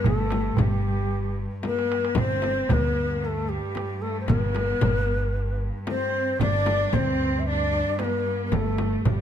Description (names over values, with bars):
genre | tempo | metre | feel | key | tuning
Arabic maqam ensemble | 113 BPM | 4/4 | straight | G maqam rast | A4 = 440 Hz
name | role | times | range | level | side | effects
breathy mellow ney | melody | 0.0-9.2 s | G4 to E5 | -28 LUFS | left 2 dB | none
clear chamber cello section | second line | 0.0-9.2 s | G3 to D4 | -30 LUFS | equal | none
rich cello | drone | 0.0-9.2 s | G2 | -32 LUFS | equal | none
darbuka | percussion | 0.0-9.2 s | none | -28 LUFS | right 4 dB | none
upright bass | bass | 0.1-9.2 s | G1 to D2 | -27 LUFS | right 1 dB | none
frame drum | percussion | 0.1-9.2 s | none | -29 LUFS | left 5 dB | none
room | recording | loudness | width
light reverb | close, detailed microphones | -22 LUFS | side -9 dB against mid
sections
0.0-9.2 A section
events
drum fill 1.6-2.2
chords
none